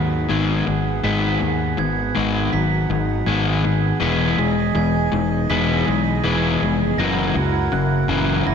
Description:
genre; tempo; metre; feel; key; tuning
post-rock; 81 BPM; 4/4; straight; G# minor; A4 = 439 Hz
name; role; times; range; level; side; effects
hand-pumped harmonium; sustained chords; 0.0-8.5 s; B3 to G#5; -28 LUFS; right 6 dB; none
glockenspiel with rubber mallets; arpeggios; 0.0-8.5 s; F#6 to B6; -28 LUFS; right 8 dB; tape echo, slapback echo
mellow electric guitar; arpeggios; 0.0-8.5 s; E2 to G#4; -27 LUFS; right 3 dB; tape echo, slapback echo
overdriven semi-hollow guitar; riff; 0.0-8.5 s; F#2 to B3; -20 LUFS; left 5 dB; none
growling fingered electric bass; bass; 0.0-8.5 s; E1 to D#2; -24 LUFS; right 2 dB; overdrive
room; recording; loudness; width
moderate lush hall reverb, RT60 2.8 s; big arena sound; -17 LUFS; side -7 dB against mid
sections
0.0-8.5 A section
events
build-up 0.0-8.5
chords
0.0 G#m7; 4.0 Emaj7; 7.0 F#7

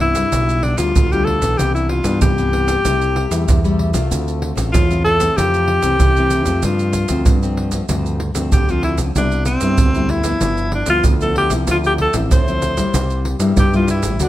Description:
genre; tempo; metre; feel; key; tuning
samba and choro; 95 BPM; 4/4; straight; C major; A4 = 440 Hz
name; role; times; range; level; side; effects
bright alto saxophone; melody; 0.0-14.3 s; C4 to C5; -18 LUFS; left 1 dB; plate reverb
nylon-string guitar; accompaniment; 0.0-14.3 s; F2 to F#4; -23 LUFS; left 2 dB; none
growling fingered electric bass; bass; 0.0-14.3 s; G1 to G2; -20 LUFS; equal; overdrive
pandeiro, maracas and surdo; percussion; 0.0-14.3 s; none; -19 LUFS; right 1 dB; none
room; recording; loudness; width
light reverb; none; -14 LUFS; side -14 dB against mid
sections
0.0-14.3 A section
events
none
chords
0.3 G7/B; 1.6 Cmaj9; 2.9 Am7/C; 4.1 Dm7; 5.4 Fmaj7; 6.6 G9sus4; 9.2 Cmaj7; 10.4 G6; 11.7 Dm9; 12.9 C7

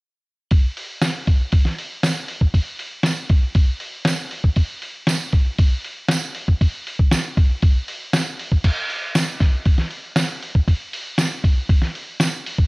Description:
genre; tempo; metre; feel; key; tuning
rock; 118 BPM; 4/4; straight; none; none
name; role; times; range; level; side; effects
lo-fi sampler-style drum kit; drums; 0.5-12.6 s; crash cymbal, hi-hat, kick drum, snare drum; -18 LUFS; equal; cassette tape
tambourine; percussion; 1.0-12.3 s; none; -30 LUFS; right 8 dB; none
room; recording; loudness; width
little or no reverb; home recording on cassette; -18 LUFS; side -26 dB against mid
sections
0.5-12.7 A section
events
none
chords
none

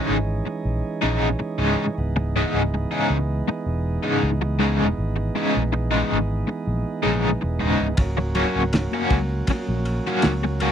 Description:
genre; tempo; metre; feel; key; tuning
psychedelic rock; 80 BPM; 4/4; straight; C# dorian; A4 = 440 Hz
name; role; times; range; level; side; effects
chamber organ, sparkling flutes; sustained chords; 0.0-10.7 s; E3 to F#4; -28 LUFS; right 4 dB; none
crunchy overdriven guitar; riff; 0.0-10.7 s; G#2 to F#4; -21 LUFS; left 1 dB; tremolo
fingered electric bass; bass; 0.1-10.7 s; C#1 to C#2; -24 LUFS; equal; none
cloth-damped thuddy drum kit; drums; 8.0-10.7 s; kick drum, ride cymbal, snare drum; -25 LUFS; equal; none
congas; percussion; 8.9-10.7 s; none; -34 LUFS; left 8 dB; none
room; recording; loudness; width
light reverb; dry, close 1970s-style studio recording; -20 LUFS; side -9 dB against mid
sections
0.0-10.7 A section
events
none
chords
0.0 C#madd9; 8.0 F#/C#

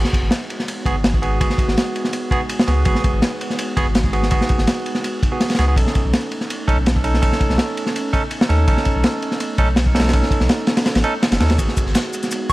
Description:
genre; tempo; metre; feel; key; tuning
drum and bass, jungle; 165 BPM; 4/4; straight; G# phrygian; A4 = 441 Hz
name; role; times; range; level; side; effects
airy breathy pad; sustained chords; 0.0-12.5 s; G#3 to F#4; -29 LUFS; equal; chorus
barky tine electric piano; stabs; 0.0-12.5 s; B3 to A4; -23 LUFS; right 2 dB; overdrive, dub echo
saturated sub bass; bass; 0.0-12.5 s; F#1 to D#2; -19 LUFS; equal; none
crunchy breakbeat drum kit; drums; 0.0-12.5 s; kick drum, ride cymbal, snare drum; -18 LUFS; equal; none
breakbeat sampler-style drum kit; drums; 11.6-12.5 s; hi-hat, shaker, snare drum; -29 LUFS; left 1 dB; high-pass filter on snare, high-pass filter on hats, high-pass filter on perc, high-pass filter on room
soft synth bell; melody; 12.5 s; C#6; -15 LUFS; right 1 dB; chorus
room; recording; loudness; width
small room ambience; vinyl crackle; -16 LUFS; side -19 dB against mid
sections
0.0-12.5 A section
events
kick drops out 10.9-11.6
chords
0.0 G#m7; 5.8 B9; 11.6 G#m7

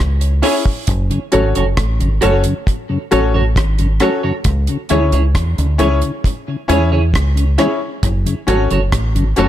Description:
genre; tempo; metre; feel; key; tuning
roots reggae; 67 BPM; 4/4; straight; F# minor; A4 = 442 Hz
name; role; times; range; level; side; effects
deep dub fingered electric bass; bass; 0.0-9.5 s; F#1 to E2; -15 LUFS; equal; none
deep reggae drum kit; drums; 0.0-9.5 s; hi-hat, kick drum, rim click; -19 LUFS; equal; dub echo
clean electric guitar; accompaniment; 0.4-9.5 s; E4 to C#5; -22 LUFS; right 7 dB; lush chorus, tape echo
clear baby grand piano; stabs; 0.4-9.5 s; C#4 to C#5; -20 LUFS; left 5 dB; tube saturation
mellow tonewheel organ; accompaniment; 1.1-9.5 s; F#2 to C#4; -21 LUFS; left 3 dB; chorus vibrato, slow rotary speaker, dub echo
room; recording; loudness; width
little or no reverb; none; -13 LUFS; side -12 dB against mid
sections
0.0-9.5 A section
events
none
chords
0.0 C#m; 0.9 F#m; 4.5 C#m; 8.0 F#m

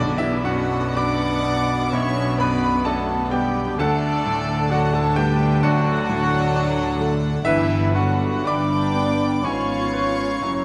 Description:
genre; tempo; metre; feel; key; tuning
classical, romantic movement for piano and orchestra; 56-67 BPM; 4/4; rubato; B minor; A4 = 441 Hz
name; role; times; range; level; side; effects
clear grand piano; melody; 0.0-10.6 s; B1 to D6; -27 LUFS; equal; none
warm symphonic violin section; melody; 0.0-10.6 s; F#4 to G5; -36 LUFS; equal; none
clear clarinet; second line; 0.0-10.6 s; B3 to E#4; -35 LUFS; equal; none
dark cor anglais; second line; 0.0-10.6 s; D4 to D5; -33 LUFS; equal; none
hollow concert flute; second line; 0.0-10.6 s; A5 to B5; -34 LUFS; equal; none
warm symphonic violin section; second line; 0.0-10.6 s; D5 to D6; -36 LUFS; equal; none
dark symphonic viola section; accompaniment; 0.0-10.6 s; A3 to E#4; -33 LUFS; equal; none
mellow trombone section; sustained chords; 0.0-10.6 s; B2 to B3; -33 LUFS; equal; none
warm French horn section; sustained chords; 0.0-10.6 s; D3 to D4; -31 LUFS; equal; none
dark trumpet; stabs; 0.0-10.6 s; D4 to D5; -31 LUFS; equal; none
rich symphonic cello section; bass; 0.0-10.6 s; F#2 to D3; -30 LUFS; equal; none
rich symphonic double bass section; bass; 0.0-10.6 s; F#1 to D2; -29 LUFS; equal; none
timpani; percussion; 0.0-1.4 s; B2; -31 LUFS; equal; none
room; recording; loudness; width
moderate recital hall reverb, RT60 1.7 s; close, detailed microphones, vinyl crackle; -21 LUFS; mono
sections
0.0-10.6 A section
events
none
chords
0.0 Bm; 3.8 D; 7.4 G; 9.4 C#7/G#

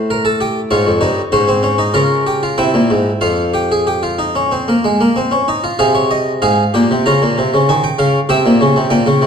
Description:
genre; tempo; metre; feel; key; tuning
classical, baroque-style 3-part fugue for harpsichord; 96 BPM; 4/4; straight; F minor; A4 = 439 Hz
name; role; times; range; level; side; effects
harpsichord; solo; 0.0-9.3 s; F2 to Bb5; -12 LUFS; equal; none
room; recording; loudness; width
wet recital hall reverb, RT60 1.3 s; dark, warm production; -12 LUFS; side -7 dB against mid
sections
0.0-5.8 A section; 5.8-9.3 B section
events
none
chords
0.0 A7(no3); 0.7 Db; 1.9 Gdim/Db; 2.6 C7; 3.2 Fm; 5.8 Fm/C; 7.1 Bbm; 8.3 C7

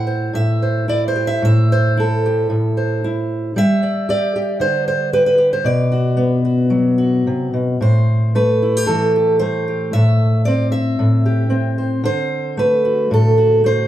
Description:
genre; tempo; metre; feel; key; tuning
folk, solo fingerstyle acoustic guitar; 113 BPM; 4/4; rubato; A dorian; A4 = 444 Hz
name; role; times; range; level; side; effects
fingerpicked steel-string acoustic guitar; solo; 0.0-13.9 s; A2 to F#5; -14 LUFS; equal; none
room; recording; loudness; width
moderate studio reverb, RT60 0.6 s; heard from further back in the room; -14 LUFS; side -12 dB against mid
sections
0.0-7.8 A section; 7.8-13.9 B section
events
none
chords
0.0 Am7; 3.6 G5; 5.7 Bm; 7.8 Am7; 12.1 D

